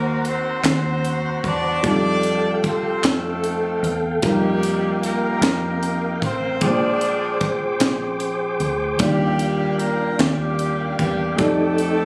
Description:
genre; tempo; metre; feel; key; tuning
slow gospel; 50 BPM (dotted quarters); 6/8; straight; unclear; A4 = 440 Hz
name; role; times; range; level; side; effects
mellow horn section; melody; 0.0-12.1 s; G3 to D5; -26 LUFS; equal; none
dark upright piano; accompaniment; 0.0-12.1 s; Bb2 to G5; -28 LUFS; equal; none
tonewheel organ; sustained chords; 0.0-12.1 s; D4 to D6; -28 LUFS; equal; slow rotary speaker, chorus vibrato
deep dub fingered electric bass; bass; 0.0-12.1 s; A1 to F2; -28 LUFS; equal; none
crisp fusion drum kit; drums; 0.2-12.0 s; hi-hat, kick drum, snare drum; -26 LUFS; equal; none
group handclap; percussion; 0.6-10.6 s; none; -28 LUFS; equal; none
room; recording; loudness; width
light reverb; recorded on a phone in the room, studio reverb, compression; -21 LUFS; mono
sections
0.0-12.1 A section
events
none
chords
0.0 Ebm6; 1.8 F9; 4.2 F9sus4; 6.6 Bb13; 9.0 Ebmaj9; 11.4 F13

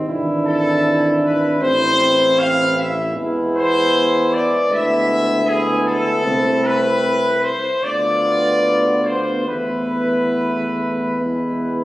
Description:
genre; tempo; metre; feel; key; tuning
classical, hymn-like piece for brass band; 77 BPM; 4/4; uneven beats, rubato; unclear; A4 = 440 Hz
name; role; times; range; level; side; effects
clear flugelhorn; second line; 0.0-11.8 s; E4 to F4; -26 LUFS; right 2 dB; none
warm euphonium; accompaniment; 0.0-11.8 s; B3 to D4; -21 LUFS; right 1 dB; none
warm trombone; accompaniment; 0.0-11.8 s; E3 to B3; -29 LUFS; right 2 dB; none
warm tuba; bass; 0.0-11.8 s; G#1 to E2; -24 LUFS; equal; none
warm trumpet section; melody; 0.5-11.8 s; G#4 to F5; -18 LUFS; left 1 dB; none
room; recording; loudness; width
moderate recital hall reverb, RT60 1.8 s; recorded on a phone in the room, club reverb; -15 LUFS; side -17 dB against mid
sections
0.0-11.8 A section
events
none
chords
0.1 E7/G#; 1.6 Am; 3.2 E; 4.7 E7/D; 6.3 Am/C; 7.8 Bdim/D; 9.5 Esus4; 11.2 E

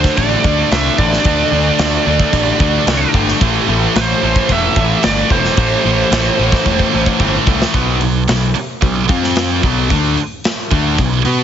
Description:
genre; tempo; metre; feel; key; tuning
hard rock; 111 BPM; 4/4; straight; B phrygian; A4 = 445 Hz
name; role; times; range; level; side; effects
biting lead guitar; melody; 0.0-7.4 s; C5 to E5; -18 LUFS; right 3 dB; overdrive, tape echo
crunchy overdriven guitar; riff; 0.0-11.4 s; A2 to B4; -19 LUFS; left 12 dB; none
heavy high-gain guitar; riff; 0.0-11.4 s; A2 to B4; -18 LUFS; right 15 dB; distortion
fuzz picked electric bass; bass; 0.0-11.4 s; E1 to B2; -18 LUFS; equal; overdrive
tight metal drum kit; drums; 0.0-11.4 s; crash cymbal, hi-hat, kick drum, snare drum; -18 LUFS; equal; none
room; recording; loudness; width
little or no reverb; heavily compressed radio sound, multiband compression, nothing above 7.7 kHz; -12 LUFS; side -9 dB against mid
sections
0.0-7.7 A section; 7.7-11.4 B section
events
drum fill 6.7-7.7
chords
0.0 D5; 3.4 Am; 7.7 B5; 9.1 F5; 9.6 Bm

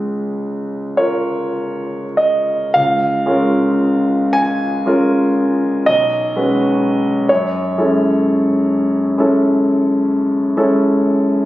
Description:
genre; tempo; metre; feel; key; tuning
classical, impressionist solo piano; 33-45 BPM (dotted quarters); 9/8; rubato; Db major; A4 = 440 Hz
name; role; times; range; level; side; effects
clear concert grand piano; solo; 0.0-11.5 s; Cb2 to Ab5; -14 LUFS; equal; none
room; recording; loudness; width
moderate scoring stage reverb, RT60 1.9 s; recorded on a phone in the room, studio reverb; -14 LUFS; side -16 dB against mid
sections
0.0-2.7 A section; 2.7-11.5 A section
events
none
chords
0.0 Db6; 5.9 Cb69; 7.3 Gbm9

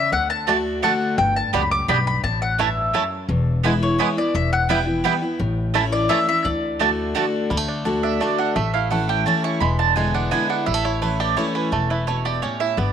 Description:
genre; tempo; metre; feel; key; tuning
bluegrass; 171 BPM; 3/4; straight; unclear; A4 = 442 Hz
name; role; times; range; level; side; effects
mandolin; melody; 0.0-7.3 s; C#5 to D6; -22 LUFS; left 3 dB; none
picked steel-string acoustic guitar; accompaniment; 0.0-12.9 s; E2 to F#4; -24 LUFS; left 2 dB; none
upright bass; bass; 0.1-12.9 s; E1 to D2; -24 LUFS; left 1 dB; none
bluegrass banjo; melody; 0.5-12.9 s; G3 to G4; -27 LUFS; right 3 dB; none
mandolin; stabs; 0.5-12.9 s; A3 to C#6; -24 LUFS; right 12 dB; none
room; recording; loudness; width
light reverb, small room ambience; 1960s-style stereo; -18 LUFS; side -8 dB against mid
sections
0.0-7.5 A section; 7.5-12.9 B section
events
mandolin solo 7.5-12.9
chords
0.1 D; 1.2 G; 2.2 A; 3.3 E; 4.3 Em; 5.4 A; 6.5 D; 8.6 A; 9.6 E7; 10.7 A

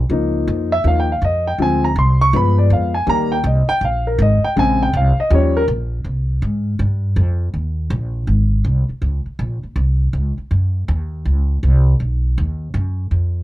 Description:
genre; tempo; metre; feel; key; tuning
jazz, big band swing; 161 BPM; 4/4; swing 65% on 8ths; Ab major; A4 = 440 Hz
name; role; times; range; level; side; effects
upright bass; bass; 0.0-13.4 s; Ab1 to Ab2; -16 LUFS; equal; none
warm grand piano; accompaniment; 0.1-5.6 s; Db3 to Db6; -17 LUFS; left 1 dB; none
room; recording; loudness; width
little or no reverb; dry, close 1970s-style studio recording; -15 LUFS; side -16 dB against mid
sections
0.0-6.0 A section; 6.0-13.4 B section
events
grand piano solo 0.0-6.0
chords
0.1 Db69; 1.6 Dm7b5; 2.3 G7b9; 3.1 Cm7; 4.6 Bbm7; 5.3 Eb9; 6.0 Abmaj7; 7.5 Eb5; 8.3 Ab; 9.0 Bbmadd9; 10.5 Gb5; 12.0 B

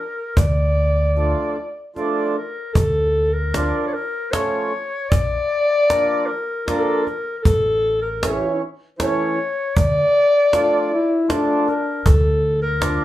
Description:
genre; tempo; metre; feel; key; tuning
klezmer; 77 BPM; 3/4; straight; D harmonic minor; A4 = 440 Hz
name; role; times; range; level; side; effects
mellow clarinet; melody; 0.0-13.0 s; A4 to D5; -20 LUFS; left 1 dB; none
upright bass; bass; 0.4-13.0 s; A1 to D2; -20 LUFS; equal; none
cajon; drums; 0.4-13.0 s; none; -20 LUFS; equal; none
mellow accordion; accompaniment; 1.2-13.0 s; E3 to D4; -22 LUFS; right 2 dB; none
warm trombone; second line; 10.5-12.1 s; D4 to F4; -20 LUFS; left 2 dB; none
room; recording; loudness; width
wet studio reverb, RT60 0.6 s; band playing live in one room; -17 LUFS; side -14 dB against mid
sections
0.0-2.8 A section; 2.8-12.1 B section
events
speeding up 0.0-13.0; break 1.2-2.8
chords
0.0 Dm; 5.1 Bb; 7.5 A; 9.8 Dm

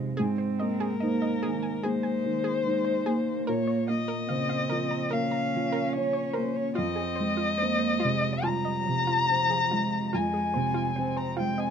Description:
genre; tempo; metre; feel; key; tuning
neoclassical piano and strings; 72 BPM; 4/4; rubato; unclear; A4 = 439 Hz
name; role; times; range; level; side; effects
muted cello; second line; 0.0-11.7 s; F3 to Db4; -33 LUFS; right 8 dB; none
felt-muted upright piano; accompaniment; 0.0-11.7 s; F2 to Db5; -29 LUFS; equal; none
analog pluck; arpeggios; 0.2-11.7 s; F4 to Bb5; -37 LUFS; right 2 dB; chorus
muted violin; melody; 0.6-11.7 s; Bb4 to Bb5; -29 LUFS; left 4 dB; none
room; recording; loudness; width
little or no reverb; minimal, uncompressed stereo recording; -25 LUFS; side -7 dB against mid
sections
0.0-11.7 A section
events
none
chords
0.2 Abadd9; 3.5 Bbmadd9; 6.8 Fm7

